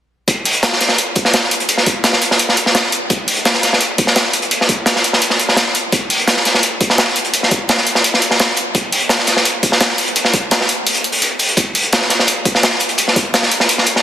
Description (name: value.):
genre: liquid drum and bass.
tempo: 170 BPM.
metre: 4/4.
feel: straight.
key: none.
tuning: none.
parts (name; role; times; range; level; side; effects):
crunchy breakbeat drum kit; drums; 0.3-14.0 s; hi-hat, snare drum; -13 LUFS; equal; high-pass filter on hats, studio reverb, high-pass filter on snare, high-pass filter on room.
electronic hi-hat; drums; 0.3-13.9 s; none; -20 LUFS; equal; studio reverb.
electronic kick drum; drums; 0.3-13.2 s; none; -19 LUFS; equal; high-pass filter on kick, studio reverb.
room: light reverb, studio reverb.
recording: dense, heavily limited modern master.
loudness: -12 LUFS.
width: side -11 dB against mid.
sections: 0.3-14.0 A section.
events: kick drops out 10.9-11.6.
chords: none.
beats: | 0.28 0.63 0.98 1.34 | 1.69 2.04 2.40 2.75 | 3.10 3.45 3.81 4.16 | 4.51 4.87 5.22 5.57 | 5.92 6.28 6.63 6.98 | 7.34 7.69 8.04 8.39 | 8.75 9.10 9.45 9.81 | 10.16 10.51 10.87 11.22 | 11.57 11.93 12.28 12.63 | 12.98 13.34 13.69.